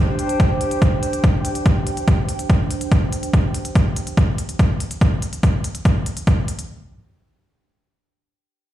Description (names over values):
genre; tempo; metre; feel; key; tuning
psychedelic trance; 143 BPM; 4/4; straight; unclear; A4 = 439 Hz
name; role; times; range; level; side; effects
warbly tape-like pad; texture; 0.0-3.3 s; D4 to G5; -26 LUFS; right 1 dB; chorus, built-in reverb, sidechain pumping
electronic hi-hat; drums; 0.2-6.7 s; none; -32 LUFS; left 1 dB; studio reverb
electronic kick drum; drums; 0.4-6.4 s; none; -17 LUFS; equal; overdrive, studio reverb
room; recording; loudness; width
digital ambience; played on a big sound system in a bare room, large studio reverb; -17 LUFS; side -13 dB against mid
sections
0.0-6.7 A section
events
none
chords
0.0 G5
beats
0.40 0.82 1.24 | 1.66 2.08 2.50 2.92 | 3.33 3.75 4.17 4.59 | 5.01 5.43 5.85 6.27